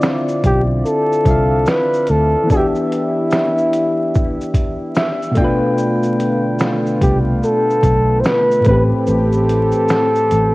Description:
lo-fi hip hop; 73 BPM; 4/4; swing 65% on 16ths; A4 = 440 Hz
soft electric-piano-like synth keys; accompaniment; 0.0-10.5 s; A2 to G5; -18 LUFS; left 1 dB; chorus, cassette tape, low-pass filter
trip hop sampler-style drum kit; drums; 0.0-10.5 s; finger snaps, hi-hat, kick drum, shaker, snare drum; -19 LUFS; equal; cassette tape
vintage muted fingered electric bass; bass; 0.4-10.5 s; A1 to D2; -17 LUFS; equal
breathy flugelhorn; melody; 0.5-10.5 s; E4 to C5; -17 LUFS; equal; low-pass filter, cassette tape, analog delay
warm analog pad; sustained chords; 5.8-10.5 s; D3 to G4; -24 LUFS; equal; chorus, low-pass filter
light reverb, digital ambience; home recording on cassette, vinyl crackle; -13 LUFS; side -20 dB against mid
0.0-10.5 A section
synth keys fill 4.6-5.8
0.0 Dm9; 2.5 Em7; 5.4 Bm7b5; 8.7 Am7

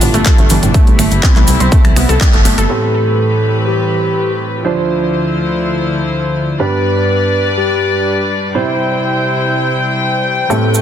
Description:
progressive house; 123 BPM; 4/4; straight; A4 = 437 Hz
soft octave-layered synth lead; melody; 0.0-10.8 s; F4 to B4; -19 LUFS; left 1 dB; chorus, tape echo
dark studio string section; sustained chords; 0.0-10.8 s; D2 to G5; -17 LUFS; left 2 dB; sidechain pumping
glassy wavetable pluck; arpeggios; 0.0-2.6, 10.5-10.8 s; A2 to A4; -18 LUFS; right 1 dB; chorus, sidechain pumping, digital delay
plucky analog bass; bass; 0.0-2.7 s; G1 to C2; -14 LUFS; equal; sidechain pumping
house drum kit; drums; 0.0-2.7 s; finger snaps, handclaps, hi-hat; -19 LUFS; left 1 dB; sidechain pumping on hats, studio reverb
cabasa; percussion; 0.0-2.7, 10.5-10.8 s; -23 LUFS; right 4 dB
congas; percussion; 0.1-2.6 s; -25 LUFS; right 5 dB
electronic kick drum; drums; 0.3-2.3 s; -10 LUFS; equal; studio reverb
felt-muted upright piano; stabs; 2.7-10.8 s; G2 to C5; -17 LUFS; right 3 dB; sidechain pumping, low-pass filter, digital delay
light reverb; dense, heavily limited modern master; -11 LUFS; side -10 dB against mid
0.0-2.7 A section; 2.7-10.8 B section
filter sweep on string section 0.0-2.7; band accent 2.2
0.0 G; 0.7 C; 2.7 Am7; 4.6 Dm7; 6.6 G; 8.5 C

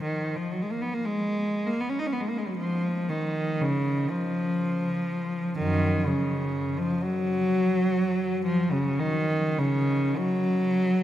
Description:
classical, free, expressive piece for unaccompanied cello; 32-43 BPM (dotted quarters); 6/8; rubato; A4 = 440 Hz
rich cello; solo; 0.0-11.0 s; F#2 to D#4; -24 LUFS; equal
wet cathedral reverb, RT60 6.2 s; -24 LUFS; side -12 dB against mid
0.0-11.0 A section

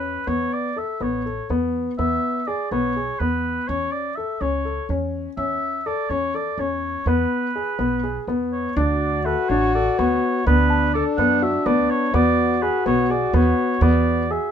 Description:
contemporary instrumental, chamber music in an uneven meter; 249 BPM (eighths); 7/8; straight; E mixolydian; A4 = 439 Hz
warm oboe; melody; 0.0-14.5 s; B4 to F#5; -25 LUFS; right 2 dB
warm baby grand piano; arpeggios; 0.0-14.5 s; B3 to A4; -23 LUFS; left 2 dB
upright bass; bass; 0.0-14.4 s; A1 to F#2; -24 LUFS; right 3 dB
clear French horn; second line; 8.8-14.5 s; D4 to F#4; -24 LUFS; left 4 dB
small celesta; texture; 9.2-11.6 s; E5 to A5; -33 LUFS; left 6 dB
little or no reverb; close, detailed microphones; -19 LUFS; side -8 dB against mid
0.0-8.8 A section; 8.8-14.5 B section
0.3 Aadd9; 2.0 E; 3.7 C#m; 5.4 A/E; 7.1 E; 8.8 D; 10.5 Bm7/D; 12.1 Eadd9

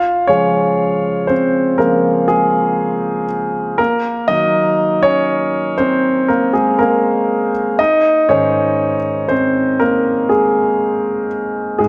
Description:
pop ballad; 60 BPM; 4/4; straight; A4 = 442 Hz
warm concert grand piano; solo; 0.0-11.9 s; Ab2 to F5; -15 LUFS; equal
moderate scoring stage reverb, RT60 1.9 s; faint mains hum; -15 LUFS; mono
0.0-11.9 A section
grand piano solo 0.0-11.9
0.0 Db; 3.8 Ebm; 7.8 Ab

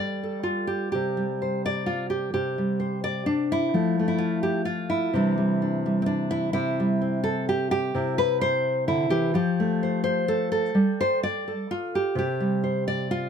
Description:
folk, solo fingerstyle acoustic guitar; 128 BPM; 3/4; straight; C major; A4 = 441 Hz
nylon-string guitar; solo; 0.0-13.3 s; C3 to D5; -23 LUFS; equal
light reverb; -23 LUFS; side -7 dB against mid
0.0-6.5 A section; 6.5-13.3 A section
0.0 Gsus2; 0.9 C5; 3.7 F; 5.1 Cadd9; 9.3 Fadd9; 10.7 Gsus2; 12.2 C5

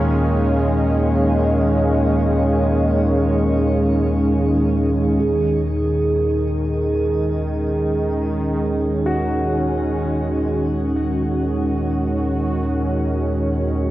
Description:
dark ambient drone; free time; Eb minor; A4 = 440 Hz
sweeping resonant pad; sustained chords; 0.0-13.9 s; Eb3 to F5; -19 LUFS; right 1 dB; chorus, shimmer reverb
deep rumbling drone; drone; 0.0-13.9 s; Eb2 to Bb2; -22 LUFS; left 1 dB; built-in reverb
bronze singing bowl; texture; 5.2-13.9 s; Ab4; -25 LUFS; right 3 dB; shimmer reverb
warm grand piano; arpeggios; 9.1-13.9 s; Gb4; -29 LUFS; left 1 dB; tape echo, shimmer reverb
wet cathedral reverb, RT60 5.3 s; worn, warbling old tape, cassette tape, warbly pitch drift; -17 LUFS; side -15 dB against mid
0.0-5.2 A section; 5.2-13.9 B section
0.0 Ebsus2; 5.2 Ebm

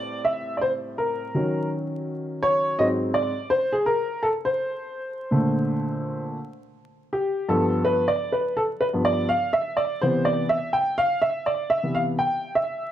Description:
hip hop; 83 BPM; 4/4; swing 62% on 16ths; A4 = 440 Hz
warm upright piano; solo; 0.0-12.9 s; G2 to G5; -22 LUFS; equal; slapback echo
light reverb, small room ambience; vinyl crackle; -22 LUFS; side -11 dB against mid
0.0-12.9 A section
upright piano solo 0.0-12.9
0.0 Am7; 1.3 D#m7; 2.8 G#7; 4.2 Bbmaj9; 7.1 G7; 10.0 Cmaj7

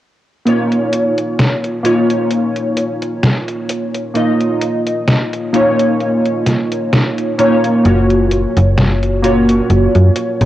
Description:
vaporwave; 65 BPM; 4/4; swing 55% on 16ths; A4 = 440 Hz
warbly lo-fi synth keys; accompaniment; 0.4-10.5 s; A#3 to D#5; -14 LUFS; equal; wide subtle chorus, cassette tape, analog delay
detuned 8-bit digital drum machine; drums; 0.5-10.5 s; hi-hat, snare drum; -16 LUFS; equal; cassette tape
slap-like FM bass; bass; 7.9-10.5 s; F#1 to F#2; -13 LUFS; equal
light reverb; home recording on cassette; -12 LUFS; side -13 dB against mid
0.5-10.5 A section
0.5 A#madd11; 7.9 F#maj7

